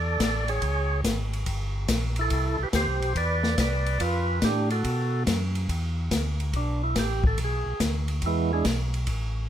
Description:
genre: soul jazz organ trio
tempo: 142 BPM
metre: 4/4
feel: swing 67% on 8ths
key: unclear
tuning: A4 = 440 Hz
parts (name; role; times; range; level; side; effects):
- percussive tonewheel organ; melody; 0.0-8.7 s; E3 to D5; -28 LUFS; right 2 dB; slow rotary speaker
- mellow tonewheel organ; bass; 0.0-9.5 s; G1 to B2; -27 LUFS; equal; chorus vibrato, slow rotary speaker
- open jazz drum kit; drums; 0.2-9.2 s; hi-hat, kick drum, ride cymbal, snare drum; -29 LUFS; left 2 dB; none
room: light reverb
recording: close, detailed microphones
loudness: -24 LUFS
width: side -10 dB against mid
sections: 0.0-5.7 A section; 5.7-9.5 B section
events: tonewheel organ solo 5.7-9.5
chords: 0.0 Dsus2; 0.6 C#5; 2.3 Cmaj9; 4.0 Bm7b5; 4.8 B5; 5.7 E5; 7.4 Bm; 8.2 E7

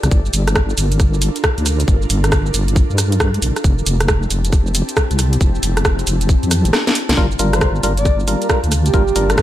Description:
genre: UK garage, two-step garage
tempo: 136 BPM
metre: 4/4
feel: swing 64% on 16ths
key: G dorian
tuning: A4 = 440 Hz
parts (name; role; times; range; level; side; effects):
- ethereal airy pad; sustained chords; 0.0-9.4 s; Bb3 to A5; -26 LUFS; equal; ensemble chorus, built-in reverb, sidechain pumping
- deep soft wobble bass; bass; 0.0-9.4 s; F1 to G2; -17 LUFS; equal; chorus, sidechain pumping
- garage drum kit; drums; 0.0-9.4 s; hi-hat, rim click, shaker, snare drum; -20 LUFS; right 1 dB; studio reverb
- electronic kick drum; drums; 0.1-9.4 s; none; -16 LUFS; equal; studio reverb
- percussive organ stab; stabs; 7.2-9.4 s; G3 to Bb4; -21 LUFS; left 1 dB; chorus, tape echo
- breathy flute-like synth lead; melody; 7.5-9.4 s; G4 to D5; -21 LUFS; right 3 dB; tremolo, lush chorus
room: little or no reverb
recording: none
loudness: -14 LUFS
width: side -13 dB against mid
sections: 0.0-9.4 A section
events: kick drops out 6.7-7.2; drum fill 6.7-7.2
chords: 0.1 Gm7; 3.6 Fmaj7; 7.2 Gm7

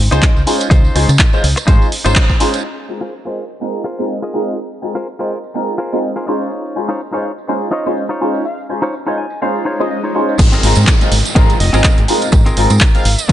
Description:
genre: filtered disco house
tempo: 124 BPM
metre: 4/4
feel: swing 56% on 16ths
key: Ab major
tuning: A4 = 440 Hz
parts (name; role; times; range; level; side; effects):
- fingered electric bass; bass; 0.0-2.1, 10.4-13.3 s; F1 to Db3; -14 LUFS; equal; sidechain pumping, low-pass filter
- bright baby grand piano; accompaniment; 0.1-13.3 s; Ab3 to C5; -19 LUFS; equal; phaser, sidechain pumping, low-pass filter
- direct-recorded clean electric guitar; riff; 0.1-13.3 s; C4 to Ab5; -22 LUFS; left 1 dB; sidechain pumping, low-pass filter
- punchy analog drum machine; drums; 0.1-2.6, 10.4-13.3 s; crash cymbal, handclaps, hi-hat, rim click; -18 LUFS; equal; sidechain pumping on hats, low-pass filter on hats, low-pass filter on snare, sidechain pumping on cymbals, low-pass filter on cymbals, low-pass filter on room
- tambourine; percussion; 0.1-13.3 s; none; -27 LUFS; right 7 dB; sidechain pumping on perc, low-pass filter on perc
- electronic kick drum; drums; 0.2-2.4, 10.4-13.3 s; none; -11 LUFS; equal; none
- analog synth brass; melody; 7.7-13.3 s; Eb5 to F5; -26 LUFS; right 1 dB; chorus, sidechain pumping, low-pass filter
- swell and downlifter; sound effects; 9.6-13.3 s; none; -24 LUFS; equal; none
room: light reverb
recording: nothing above 10.3 kHz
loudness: -12 LUFS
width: side -12 dB against mid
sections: 0.0-2.6 A section; 2.6-10.4 B section; 10.4-13.3 C section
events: band accent 2.2; filter sweep 2.6-10.4; clean electric guitar fill 8.9-10.4; swell 9.6-10.4; drop 10.4-13.3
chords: 0.0 Dbmaj9; 2.6 Ab69; 6.3 Dbmaj9; 10.4 Ab69

